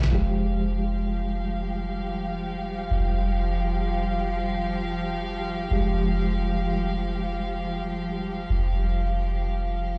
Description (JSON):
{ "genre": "trip hop", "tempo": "free time", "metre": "none", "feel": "none", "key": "F minor", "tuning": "A4 = 437 Hz", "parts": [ { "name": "bright reed electric piano", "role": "accompaniment", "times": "0.0-10.0 s", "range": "F3 to G4", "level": "-34 LUFS", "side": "equal", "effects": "fast tremolo, vintage 12-bit sampler grit, tape echo" }, { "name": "warm studio string section", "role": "sustained chords", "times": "0.0-10.0 s", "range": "F3 to F5", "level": "-33 LUFS", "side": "equal", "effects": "none" }, { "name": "soft 808-style bass", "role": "bass", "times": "0.0-10.0 s", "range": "F1 to Bb1", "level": "-29 LUFS", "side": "equal", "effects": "tube saturation" }, { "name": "wind-like tuned noise texture", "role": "texture", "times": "0.0-10.0 s", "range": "G3 to C5", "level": "-39 LUFS", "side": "equal", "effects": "built-in reverb" } ], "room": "little or no reverb", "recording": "played on a big sound system in a bare room, stone room reverb", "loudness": "-27 LUFS", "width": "mono", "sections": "0.1-10.0 A section", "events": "none", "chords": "0.1 Fmadd9" }